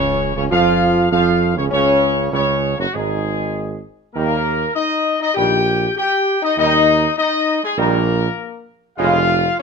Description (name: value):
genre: classical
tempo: 99 BPM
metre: 4/4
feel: straight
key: Db major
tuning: A4 = 440 Hz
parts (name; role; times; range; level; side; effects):
- mellow trumpet section; melody; 0.0-9.6 s; Gb4 to G5; -20 LUFS; left 1 dB; none
- dark trombone section; sustained chords; 0.0-9.2 s; Gb2 to Ab3; -22 LUFS; right 3 dB; none
- mellow French horn section; sustained chords; 0.0-9.6 s; Gb3 to G4; -20 LUFS; left 5 dB; none
- mellow tuba; bass; 0.0-9.5 s; F1 to F2; -19 LUFS; right 6 dB; none
room: light reverb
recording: close, detailed microphones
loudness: -15 LUFS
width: side -5 dB against mid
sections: 0.0-9.6 A section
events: none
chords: 0.0 Db; 4.2 Eb; 9.0 Db/F